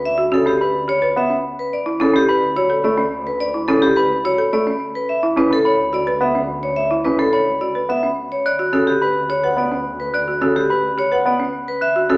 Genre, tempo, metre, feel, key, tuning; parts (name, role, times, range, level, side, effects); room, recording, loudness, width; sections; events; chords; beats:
classical, minimalist pattern music; 107 BPM; 3/4; straight; A4 = 440 Hz
vibraphone with hard mallets; melody; 0.0-12.2 s; G4 to F#5; -19 LUFS; left 1 dB
warm symphonic double bass section; bass; 0.0-12.2 s; D2; -33 LUFS; equal
folk marimba with hard mallets; arpeggios; 0.2-12.2 s; C#4 to B4; -22 LUFS; right 1 dB
bright baby grand piano; accompaniment; 0.3-12.2 s; C#3 to B3; -22 LUFS; equal
glockenspiel with soft plastic mallets; arpeggios; 0.6-12.0 s; B5 to F#6; -23 LUFS; equal
wet large studio reverb, RT60 1.4 s; heard from further back in the room, small speaker sound; -15 LUFS; side -23 dB against mid
0.0-12.2 A section
0.0 E9sus4/D; 5.1 Dmaj7sus2; 8.5 Gmaj7/D (rootless)
| 0.04 0.60 1.16 | 1.72 2.29 2.85 | 3.41 3.97 4.53 | 5.09 5.65 6.21 | 6.77 7.33 7.89 | 8.45 9.01 9.57 | 10.13 10.70 11.26 | 11.82